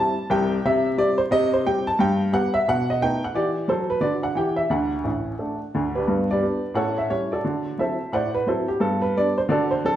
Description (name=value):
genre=jazz, stride piano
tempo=176 BPM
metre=4/4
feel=swing 62% on 8ths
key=G major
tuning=A4 = 440 Hz
part: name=warm upright piano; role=solo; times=0.0-10.0 s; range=A1 to A5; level=-20 LUFS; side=equal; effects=none
room=wet large studio reverb, RT60 1.2 s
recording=band playing live in one room, vinyl crackle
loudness=-20 LUFS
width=side -11 dB against mid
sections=0.0-6.1 A section; 6.1-10.0 B section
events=none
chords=0.0 C5; 2.0 G; 2.7 B7; 3.3 Em7; 4.7 D; 6.1 G; 6.8 A7; 7.4 D9; 8.8 G